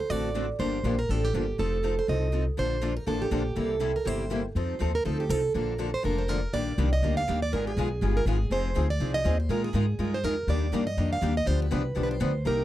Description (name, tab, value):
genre	acoustic string swing (jazz manouche)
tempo	243 BPM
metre	4/4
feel	swing 56% on 8ths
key	Bb major, Eb major from 6.5 s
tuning	A4 = 440 Hz
part	picked plugged-in steel-string acoustic guitar	melody	0.0-12.6 s	G4 to F5	-30 LUFS	right 3 dB	none
part	picked steel-string acoustic guitar	accompaniment	0.1-12.6 s	C3 to Bb4	-32 LUFS	left 6 dB	none
part	picked steel-string acoustic guitar	accompaniment	0.1-12.6 s	C3 to Bb4	-36 LUFS	right 9 dB	none
part	upright bass	bass	0.1-12.6 s	F1 to Bb2	-28 LUFS	equal	none
room	little or no reverb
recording	dry, close 1970s-style studio recording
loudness	-25 LUFS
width	side -13 dB against mid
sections	0.0-6.5 A section; 6.5-12.6 B section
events	none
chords	0.0 D7; 0.6 Gm7; 1.6 F7; 2.6 Bbmaj7; 3.6 C7; 4.6 F7; 5.5 Bbmaj7; 6.5 Ebmaj9; 7.5 Abm6; 8.5 Fm7; 9.5 Bb7sus4; 10.5 Ebmaj7; 11.5 G7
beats	0.10 0.35 | 0.60 0.84 1.09 1.34 | 1.59 1.83 2.08 2.33 | 2.58 2.82 3.07 3.32 | 3.57 3.81 4.06 4.31 | 4.56 4.80 5.05 5.30 | 5.55 5.79 6.04 6.29 | 6.54 6.78 7.03 7.28 | 7.52 7.77 8.02 8.26 | 8.51 8.76 9.00 9.25 | 9.50 9.74 9.99 10.24 | 10.48 10.73 10.98 11.22 | 11.47 11.71 11.96 12.21 | 12.45